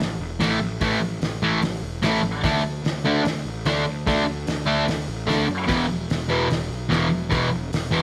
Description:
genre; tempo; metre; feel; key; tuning
garage rock duo or trio; 148 BPM; 4/4; straight; unclear; A4 = 440 Hz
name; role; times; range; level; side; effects
fuzz picked electric bass; bass; 0.0-8.0 s; E1 to F#2; -31 LUFS; equal; overdrive
cloth-damped thuddy drum kit; drums; 0.0-7.8 s; hi-hat, kick drum, snare drum; -30 LUFS; equal; none
fuzz guitar; riff; 0.4-8.0 s; E2 to D4; -24 LUFS; equal; distortion
room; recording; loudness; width
light reverb, small room ambience; none; -23 LUFS; mono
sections
0.0-8.0 A section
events
none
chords
0.0 A5; 2.4 D5; 5.7 E5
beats
0.01 0.41 | 0.82 1.23 1.63 2.04 | 2.44 2.85 3.26 3.67 | 4.07 4.48 4.88 5.29 | 5.70 6.10 6.51 6.92 | 7.32 7.73

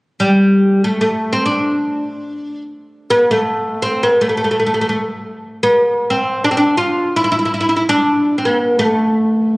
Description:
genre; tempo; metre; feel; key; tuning
arabic; free time; none; none; A maqam bayati; A4 = 440 Hz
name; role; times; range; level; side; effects
oud; solo; 0.2-9.6 s; G3 to F4; -13 LUFS; equal; none
room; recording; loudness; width
moderate scoring stage reverb, RT60 2.0 s; recorded on a phone in the room, club reverb; -13 LUFS; side -24 dB against mid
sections
0.0-9.6 A section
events
none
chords
none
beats
free time

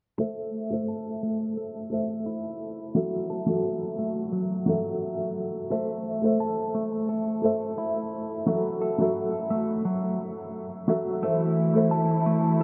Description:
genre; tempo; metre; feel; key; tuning
trip hop; 87 BPM; 4/4; straight; A minor; A4 = 440 Hz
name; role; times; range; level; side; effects
felt-muted upright piano; accompaniment; 0.2-12.6 s; F#3 to E5; -29 LUFS; equal; tremolo, low-pass filter, tape echo
clean electric guitar; arpeggios; 0.2-12.6 s; F#3 to A5; -34 LUFS; equal; low-pass filter, tape echo
clear symphonic string section; sustained chords; 11.2-12.6 s; E3 to E4; -26 LUFS; equal; none
room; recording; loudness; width
wet huge ambient reverb, RT60 8.6 s; dreamy mix soaked in reverb, low-pass filter; -27 LUFS; mono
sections
0.2-12.6 A section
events
filter sweep on felt piano 0.2-12.6; filter sweep on clean electric guitar 0.2-12.6; filter sweep 0.2-12.6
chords
0.2 Am; 3.0 F#m7; 5.7 Am; 8.5 F#m7; 11.2 Am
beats
| 0.19 0.88 1.57 2.26 | 2.95 3.64 4.33 5.02 | 5.71 6.40 7.09 7.78 | 8.47 9.16 9.85 10.54 | 11.23 11.92 12.61

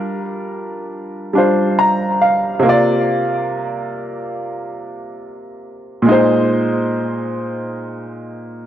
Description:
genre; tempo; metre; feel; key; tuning
R&B; 70 BPM; 4/4; straight; unclear; A4 = 440 Hz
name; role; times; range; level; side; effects
clear baby grand piano; solo; 0.0-8.7 s; Bb2 to Bb5; -16 LUFS; equal; tape echo
room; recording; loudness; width
light reverb, small room ambience; dry, gritty hardware recording, cassette tape; -15 LUFS; side -11 dB against mid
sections
0.0-8.7 A section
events
grand piano fill 1.4-2.6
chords
0.0 Gm7; 2.6 C9sus4; 6.1 Bb9sus4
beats
0.07 0.93 1.78 | 2.64 3.50 4.36 5.21 | 6.07 6.93 7.79 8.64

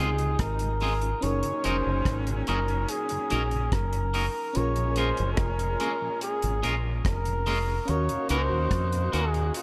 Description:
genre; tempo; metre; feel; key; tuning
lovers rock reggae; 72 BPM; 4/4; straight; unclear; A4 = 441 Hz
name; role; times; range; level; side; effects
warm flugelhorn; melody; 0.0-9.6 s; Gb4 to Db5; -33 LUFS; equal; tape echo
clear saxophone section; second line; 0.0-9.6 s; Bb2 to Gb4; -40 LUFS; equal; none
FM electric piano; accompaniment; 0.0-9.6 s; C3 to F5; -38 LUFS; equal; chorus, tape echo
mellow tonewheel organ; accompaniment; 0.0-9.4 s; Eb2 to Ab4; -41 LUFS; equal; slow rotary speaker
twangy electric guitar; stabs; 0.0-9.2 s; Gb3 to Bb4; -36 LUFS; equal; spring reverb
deep dub fingered electric bass; bass; 0.0-9.5 s; F1 to F2; -30 LUFS; equal; none
deep reggae drum kit; drums; 0.2-9.6 s; hi-hat, kick drum, rim click; -34 LUFS; equal; none
room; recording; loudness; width
light reverb, small room reverb; none; -27 LUFS; mono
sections
0.0-9.6 A section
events
none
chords
0.0 Dbmaj7; 1.2 Gb6; 4.6 Bbm7; 7.9 Ebm7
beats
0.40 | 1.23 2.06 2.89 3.72 | 4.55 5.38 6.22 7.05 | 7.88 8.71 9.54

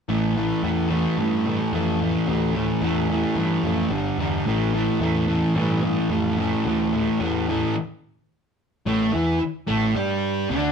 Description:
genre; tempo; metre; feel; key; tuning
rock; 109 BPM; 4/4; straight; unclear; A4 = 440 Hz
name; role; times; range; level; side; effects
fuzz guitar; riff; 0.1-10.7 s; G2 to G4; -21 LUFS; equal; distortion
growling picked electric bass; bass; 0.1-10.7 s; G1 to G2; -29 LUFS; equal; overdrive
room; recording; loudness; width
moderate studio reverb, RT60 0.7 s; band playing live in one room; -20 LUFS; side -6 dB against mid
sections
0.1-8.9 A section; 8.9-10.7 B section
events
stop 7.8-8.9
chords
0.1 A5; 3.9 G5; 4.5 A5; 8.3 N.C.; 8.9 A5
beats
| 0.09 0.63 1.18 1.72 | 2.27 2.81 3.36 3.91 | 4.46 5.01 5.55 6.10 | 6.65 7.20 7.75 8.30 | 8.85 9.40 9.95 10.50

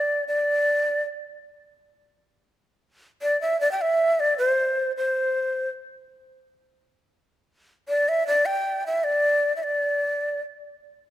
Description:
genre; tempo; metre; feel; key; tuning
andean folk; 77 BPM; 3/4; straight; unclear; A4 = 440 Hz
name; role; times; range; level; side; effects
breathy large quena; solo; 0.0-10.4 s; C5 to G5; -21 LUFS; equal; none
room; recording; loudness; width
light reverb; close, detailed microphones; -21 LUFS; side -13 dB against mid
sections
0.0-11.1 A section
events
none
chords
none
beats
| 0.48 1.26 2.04 | 2.82 3.59 4.37 | 5.15 5.93 6.70 | 7.48 8.26 9.04 | 9.82

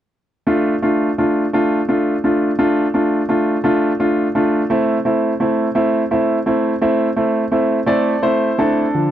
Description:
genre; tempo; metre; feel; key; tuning
pop; 57 BPM (dotted quarters); 6/8; straight; D minor; A4 = 442 Hz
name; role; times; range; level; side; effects
clear grand piano; solo; 0.5-9.1 s; D3 to D5; -14 LUFS; equal; none
room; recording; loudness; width
light reverb; dry, close 1970s-style studio recording; -15 LUFS; side -11 dB against mid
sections
0.5-8.9 A section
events
none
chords
0.5 Dm; 4.7 Am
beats
| 0.47 1.53 | 2.59 3.65 | 4.71 5.76 | 6.82 7.88 | 8.94

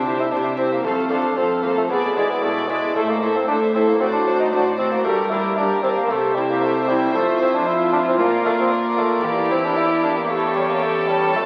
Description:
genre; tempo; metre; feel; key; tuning
classical, baroque-style concerto movement with solo episodes; 114 BPM; 4/4; straight; unclear; A4 = 440 Hz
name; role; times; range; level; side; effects
warm bassoon; melody; 0.0-11.4 s; G3 to E4; -24 LUFS; equal; none
warm chamber violin section; melody; 0.0-11.5 s; C#5 to F5; -34 LUFS; equal; none
rich chamber violin section; second line; 0.0-11.5 s; G4 to D5; -28 LUFS; equal; none
dark studio viola section; accompaniment; 0.0-11.5 s; E4 to A4; -25 LUFS; equal; none
lute; accompaniment; 0.0-11.5 s; E2 to F4; -30 LUFS; equal; none
warm chamber cello section; bass; 0.0-11.5 s; E2 to C3; -31 LUFS; equal; none
room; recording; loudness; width
wet concert hall reverb, RT60 1.8 s; very old 78 rpm record, vinyl crackle; -20 LUFS; mono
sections
0.0-11.5 A section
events
none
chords
0.0 C; 0.8 F; 1.9 E7/B; 3.0 Am; 4.0 D7/A; 5.0 Gm; 6.1 C; 7.1 F5; 8.2 Bb; 9.2 Em7b5; 10.3 A7/E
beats
0.31 0.84 1.37 | 1.90 2.42 2.95 3.48 | 4.00 4.52 5.04 5.57 | 6.09 6.62 7.14 7.67 | 8.19 8.71 9.24 9.77 | 10.29 10.82 11.35

